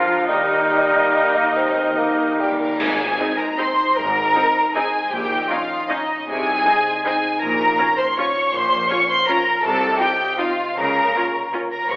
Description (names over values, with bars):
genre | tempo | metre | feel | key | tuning
classical, orchestral ballroom waltz | 133-178 BPM | 3/4 | rubato | Ab major | A4 = 441 Hz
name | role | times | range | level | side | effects
dark clarinet | second line | 0.0-2.4 s | Bb3 to D4 | -32 LUFS | equal | none
mellow hollow silver concert flute | second line | 0.0-2.4 s | Eb5 to F5 | -25 LUFS | equal | none
rich symphonic violin section | second line | 0.0-12.0 s | Eb4 to F5 | -22 LUFS | equal | none
warm oboe | second line | 0.0-2.6 s | Bb4 | -21 LUFS | equal | none
rich symphonic viola section | accompaniment | 0.0-11.6 s | C4 to F4 | -26 LUFS | equal | none
warm bassoon | accompaniment | 0.0-2.8 s | F3 to C4 | -23 LUFS | equal | none
dark French horn section | sustained chords | 0.0-11.7 s | Bb3 to G4 | -31 LUFS | equal | none
concert harp | arpeggios | 0.0-12.0 s | G2 to F6 | -29 LUFS | left 1 dB | none
rich studio cello section | bass | 0.0-12.0 s | G2 to F3 | -30 LUFS | equal | none
clear symphonic double bass section | bass | 0.3-12.0 s | G1 to Eb2 | -33 LUFS | equal | none
cymbal swell, clash cymbals and concert bass drum | percussion | 0.3-3.5 s | none | -29 LUFS | equal | none
timpani | percussion | 0.3-3.4 s | Ab2 to Eb3 | -29 LUFS | equal | none
rich studio violin section | melody | 0.7-12.0 s | Bb4 to Db6 | -21 LUFS | equal | none
room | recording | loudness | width
wet recital hall reverb, RT60 1.4 s | telephone sound | -16 LUFS | side -25 dB against mid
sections
0.0-2.8 A section; 2.8-12.0 B section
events
timpani fill 0.3-2.8; band accent 2.8-3.2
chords
0.3 Eb; 2.8 Ab; 5.1 Eb7/Bb; 6.3 Ab/C; 7.4 Bbm; 9.6 F7/C; 10.8 Bbm/Db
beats
| 0.29 0.71 1.16 | 1.57 1.98 2.41 | 2.81 3.19 3.59 | 3.97 4.36 4.75 | 5.12 5.50 5.90 | 6.29 6.66 7.05 | 7.42 7.79 8.18 | 8.54 8.90 9.28 | 9.63 9.99 10.38 | 10.77 11.14 11.53 | 11.89